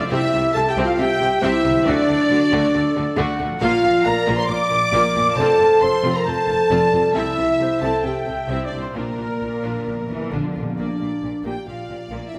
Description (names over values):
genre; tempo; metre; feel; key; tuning
cinematic; 136 BPM; 4/4; straight; Bb lydian; A4 = 440 Hz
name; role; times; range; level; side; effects
clear symphonic violin section; melody; 0.0-12.4 s; Bb4 to D6; -33 LUFS; equal; none
dark clarinet; second line; 0.0-10.6 s; F#4 to F#5; -32 LUFS; equal; none
flute section; second line; 0.0-10.3 s; Bb4 to D6; -31 LUFS; equal; none
rich studio violin section; second line; 0.0-12.4 s; Bb4 to D6; -33 LUFS; equal; none
dark French horn section; sustained chords; 0.0-12.4 s; Bb3 to D5; -23 LUFS; equal; none
concert harp; arpeggios; 0.0-12.4 s; F2 to D5; -36 LUFS; equal; none
warm trumpet section; stabs; 0.0-10.3 s; Bb4 to D6; -26 LUFS; equal; none
rich symphonic viola section; accompaniment; 0.1-12.4 s; A3 to G4; -32 LUFS; equal; none
rich symphonic cello section; bass; 0.1-12.4 s; F2 to E3; -30 LUFS; equal; none
rich symphonic double bass section; bass; 0.1-12.4 s; F1 to D2; -33 LUFS; equal; none
timpani; percussion; 8.9-11.4 s; Bb2; -34 LUFS; equal; none
room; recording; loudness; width
wet scoring stage reverb, RT60 1.6 s; none; -19 LUFS; mono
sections
0.0-10.8 A section; 10.8-12.4 B section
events
timpani fill 8.9-10.8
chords
0.1 C; 1.9 D; 3.6 Bb; 5.4 F; 7.1 C; 8.9 Bb